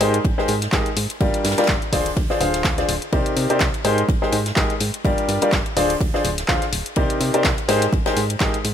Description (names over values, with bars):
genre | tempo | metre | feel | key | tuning
piano house | 125 BPM | 4/4 | swing 56% on 16ths | unclear | A4 = 442 Hz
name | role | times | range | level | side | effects
clear grand piano | riff | 0.0-8.6 s | C3 to F5 | -21 LUFS | left 1 dB | sidechain pumping, low-pass filter, ping-pong delay
solid FM bass | bass | 0.0-8.7 s | D1 to C3 | -26 LUFS | right 1 dB | sidechain pumping
punchy analog drum machine | drums | 0.0-8.7 s | handclaps, hi-hat, rim click | -25 LUFS | left 1 dB | none
swinging big-band drum kit | drums | 0.0-8.7 s | hi-hat, ride cymbal, snare drum | -31 LUFS | equal | high-pass filter on cymbals, high-pass filter on hats, high-pass filter on snare, high-pass filter on room
electronic kick drum | drums | 0.2-8.5 s | none | -23 LUFS | equal | none
room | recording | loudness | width
little or no reverb | none | -17 LUFS | side -9 dB against mid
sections
0.0-8.7 A section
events
none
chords
0.0 Abmaj9; 1.2 Gm7; 1.9 Dm7b5; 3.1 Cm9; 3.8 Abmaj9; 5.0 Gm7; 5.8 Dm7b5; 7.0 Cm9; 7.7 Abmaj9